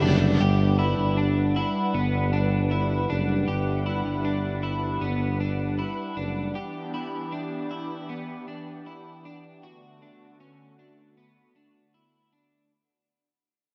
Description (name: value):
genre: dream pop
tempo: 78 BPM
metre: 4/4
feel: straight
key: G major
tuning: A4 = 439 Hz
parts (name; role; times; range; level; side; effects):
- lush unison pad; sustained chords; 0.0-12.7 s; D3 to F#5; -33 LUFS; equal; chorus, phaser
- electric guitar at the edge of break-up; arpeggios; 0.0-12.7 s; B3 to G4; -33 LUFS; equal; analog chorus, digital delay
- mellow tuba; bass; 0.0-6.5 s; F#1 to G1; -27 LUFS; equal; none
- vibraphone with hard mallets; texture; 0.0-4.7 s; B4 to F#5; -42 LUFS; equal; digital delay
room: moderate lush hall reverb, RT60 2.9 s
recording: dark, warm production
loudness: -26 LUFS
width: mono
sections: 0.4-12.7 A section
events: fade-out 0.4-12.7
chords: 0.4 Gmaj7; 6.6 Em7; 9.6 D6